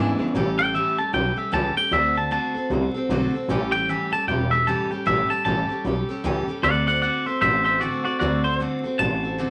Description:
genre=rockabilly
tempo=153 BPM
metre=4/4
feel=swing 60% on 8ths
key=A mixolydian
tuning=A4 = 438 Hz
part: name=picked steel-string acoustic guitar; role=accompaniment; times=0.0-9.5 s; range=A2 to B4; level=-29 LUFS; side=equal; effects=none
part: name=upright bass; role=bass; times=0.0-9.4 s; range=E1 to G#2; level=-28 LUFS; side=equal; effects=none
part: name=twangy electric guitar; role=melody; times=0.6-9.5 s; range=F#4 to A5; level=-24 LUFS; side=equal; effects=none
room=moderate club reverb, RT60 0.6 s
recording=vinyl crackle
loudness=-23 LUFS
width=mono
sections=0.3-9.5 A section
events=none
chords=0.3 A7; 1.9 D7; 3.5 A7; 6.6 D7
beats=| 0.35 0.74 1.13 1.52 | 1.92 2.31 2.70 3.10 | 3.49 3.88 4.28 4.67 | 5.06 5.46 5.85 6.24 | 6.63 7.03 7.42 7.81 | 8.20 8.60 8.99 9.38

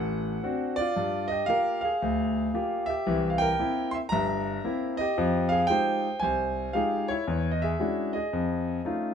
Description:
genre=solo jazz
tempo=114 BPM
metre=4/4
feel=swing 67% on 8ths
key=unclear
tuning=A4 = 440 Hz
part: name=clear concert grand piano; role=solo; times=0.0-9.1 s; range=G1 to C6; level=-25 LUFS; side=equal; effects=none
room=moderate large studio reverb, RT60 0.9 s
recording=minimal, uncompressed stereo recording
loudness=-25 LUFS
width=side -7 dB against mid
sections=0.0-9.1 A section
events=none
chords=0.0 D7; 1.0 Gm7; 3.1 C7; 5.2 Fm9; 7.3 E13; 8.3 F7alt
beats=0.43 | 0.95 1.48 2.01 2.53 | 3.06 3.59 4.11 4.64 | 5.16 5.69 6.21 6.74 | 7.27 7.79 8.32 8.84

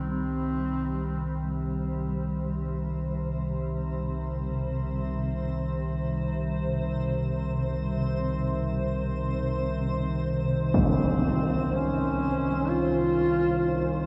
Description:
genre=dark ambient drone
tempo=free time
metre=none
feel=none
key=C minor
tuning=A4 = 440 Hz
part: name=dark duduk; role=melody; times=0.0-1.5, 10.7-14.1 s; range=C4 to F4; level=-31 LUFS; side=equal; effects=analog delay
part: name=granular cloud pad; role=sustained chords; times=0.0-14.1 s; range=C2 to C5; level=-34 LUFS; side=equal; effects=built-in reverb
part: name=tubular bells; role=arpeggios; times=0.0-10.8 s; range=C4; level=-54 LUFS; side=equal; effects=none
part: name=deep rumbling drone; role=drone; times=0.0-14.1 s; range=C2 to Eb3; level=-32 LUFS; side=equal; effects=built-in reverb
part: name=impact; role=percussion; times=10.7-10.9 s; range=none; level=-31 LUFS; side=equal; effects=low-pass filter on sfx
room=wet cathedral reverb, RT60 5.7 s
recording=dreamy mix soaked in reverb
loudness=-28 LUFS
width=mono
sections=0.0-14.1 A section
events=fade-in on ambient pad 0.0-14.1; fade-in on duduk 0.0-14.1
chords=0.0 Cm; 10.7 Bbm/C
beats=free time

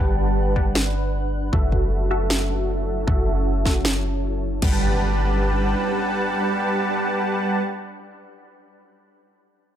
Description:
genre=future bass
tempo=155 BPM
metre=4/4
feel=half-time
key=G lydian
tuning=A4 = 442 Hz
part: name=shimmering ambient pad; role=sustained chords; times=0.1-7.6 s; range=F#3 to F#5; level=-31 LUFS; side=equal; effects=chorus, built-in reverb, sidechain pumping
part: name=supersaw stab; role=riff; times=0.0-7.6 s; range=G3 to A5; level=-24 LUFS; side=right 1 dB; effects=sidechain pumping, low-pass filter, dub echo
part: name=warm 808-style bass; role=bass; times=0.0-5.7 s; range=F#1 to G1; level=-23 LUFS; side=equal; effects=sidechain pumping
part: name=electronic kick drum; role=drums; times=0.6-4.7 s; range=none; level=-22 LUFS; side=equal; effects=none
part: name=trap drum kit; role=drums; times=0.8-4.7 s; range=crash cymbal, snare drum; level=-25 LUFS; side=equal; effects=overdrive
part: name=impact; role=sound effects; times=4.6-7.7 s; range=none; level=-33 LUFS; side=equal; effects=none
room=light reverb, digital ambience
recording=none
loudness=-19 LUFS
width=side -10 dB against mid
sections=0.0-4.6 A section; 4.6-7.7 B section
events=filter sweep on ambient pad 0.0-4.6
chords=0.0 Gmaj7; 1.5 F#m7; 4.6 Gmaj7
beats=0.36 0.75 1.14 | 1.53 1.91 2.30 2.69 | 3.08 3.46 3.85 4.24 | 4.62 5.01 5.40 5.79 | 6.17 6.56 6.95 7.33

